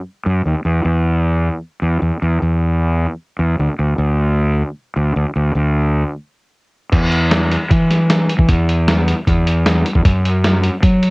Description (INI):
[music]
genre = indie rock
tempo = 153 BPM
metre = 4/4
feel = straight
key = unclear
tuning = A4 = 442 Hz
[part]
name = fuzz fingered electric bass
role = bass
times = 0.3-11.1 s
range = D2 to F#3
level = -14 LUFS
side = equal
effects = overdrive
[part]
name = lo-fi sampler-style drum kit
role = drums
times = 6.9-11.1 s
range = crash cymbal, hi-hat, kick drum, snare drum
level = -16 LUFS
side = equal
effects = cassette tape
[sound]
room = little or no reverb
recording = home recording on cassette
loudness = -14 LUFS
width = side -30 dB against mid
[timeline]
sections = 0.0-6.9 A section; 6.9-11.1 B section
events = break 6.1-6.9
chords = none